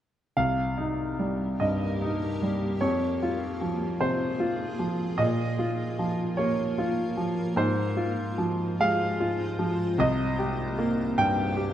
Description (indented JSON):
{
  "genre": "neoclassical piano and strings",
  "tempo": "50 BPM (dotted quarters)",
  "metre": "6/8",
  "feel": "rubato",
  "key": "F minor",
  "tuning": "A4 = 440 Hz",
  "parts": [
    { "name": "clear grand piano", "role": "accompaniment", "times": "0.4-11.7 s", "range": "C2 to G5", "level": "-25 LUFS", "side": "equal", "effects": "none" },
    { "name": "granular cloud pad", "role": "sustained chords", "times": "1.4-11.7 s", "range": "Ab3 to C5", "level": "-35 LUFS", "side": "equal", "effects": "built-in reverb" }
  ],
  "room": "moderate scoring stage reverb, RT60 1.7 s",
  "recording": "dark, warm production",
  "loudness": "-25 LUFS",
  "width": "side -11 dB against mid",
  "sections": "0.4-11.7 A section",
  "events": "none",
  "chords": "0.4 Cm7; 2.8 Fm; 5.2 Bbm; 7.6 Fm/Ab; 10.0 Cm7"
}